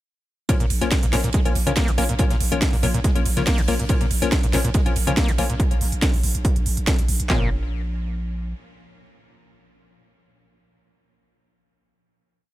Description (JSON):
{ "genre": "driving peak-time techno", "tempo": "141 BPM", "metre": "4/4", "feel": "straight", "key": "Bb minor", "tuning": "A4 = 441 Hz", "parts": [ { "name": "screaming distorted acid line", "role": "riff", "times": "0.5-7.5 s", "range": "Bb2 to Bb3", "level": "-28 LUFS", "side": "equal", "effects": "distortion, chorus, sidechain pumping, ping-pong delay" }, { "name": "wavetable chord stab", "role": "stabs", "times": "0.5-11.4 s", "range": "F3 to Db4", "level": "-27 LUFS", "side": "left 4 dB", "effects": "sidechain pumping, ping-pong delay" }, { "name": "damped 70s drum kit", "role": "drums", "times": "0.5-5.5 s", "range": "hi-hat, ride cymbal, snare drum", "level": "-38 LUFS", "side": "right 4 dB", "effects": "none" }, { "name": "techno drum kit", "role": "drums", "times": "0.5-7.4 s", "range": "handclaps, kick drum, snare drum", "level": "-20 LUFS", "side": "equal", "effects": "none" }, { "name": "techno drum kit", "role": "drums", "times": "0.5-7.3 s", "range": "hi-hat, snare drum", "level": "-26 LUFS", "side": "right 1 dB", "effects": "none" }, { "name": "growling 808-style bass", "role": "bass", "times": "0.6-8.5 s", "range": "Bb1", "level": "-26 LUFS", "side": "equal", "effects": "overdrive, sidechain pumping, low-pass filter" } ], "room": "little or no reverb", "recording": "none", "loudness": "-18 LUFS", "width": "side -15 dB against mid", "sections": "0.5-7.3 drop; 7.3-10.7 final chord", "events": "drop 0.5-7.3", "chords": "0.5 Bbm" }